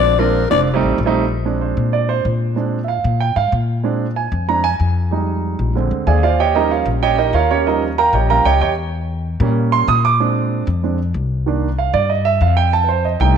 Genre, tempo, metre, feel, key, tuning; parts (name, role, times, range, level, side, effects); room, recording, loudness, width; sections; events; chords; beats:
jazz; 189 BPM; 4/4; straight; Bb mixolydian; A4 = 440 Hz
growling alto saxophone; melody; 0.0-0.6 s; Bb4 to D5; -17 LUFS; left 11 dB
warm grand piano; accompaniment; 0.0-13.4 s; D3 to Eb6; -17 LUFS; right 7 dB
upright bass; bass; 0.0-13.4 s; F1 to Bb2; -18 LUFS; left 2 dB
moderate echo chamber reverb, RT60 1.6 s, small room reverb; 1960s-style stereo with parts hard left and right; -14 LUFS; side -7 dB against mid
0.0-1.3 A section; 1.3-13.4 A section
alto saxophone solo 0.0-1.3; grand piano solo 1.3-13.4
0.0 Bb9; 0.7 F9; 1.3 Bb9; 5.1 Fm7; 5.8 Bb9; 6.4 Eb9; 8.9 Edim7; 10.2 Bb9; 11.5 Cm7; 12.7 F9
| 0.03 0.35 0.67 0.98 | 1.30 1.62 1.94 2.25 | 2.57 2.89 3.21 3.53 | 3.84 4.16 4.48 4.80 | 5.12 5.43 5.75 6.07 | 6.39 6.70 7.02 7.34 | 7.66 7.97 8.29 8.61 | 8.93 9.24 9.56 9.88 | 10.20 10.51 10.83 11.15 | 11.46 11.78 12.10 12.41 | 12.73 13.05 13.36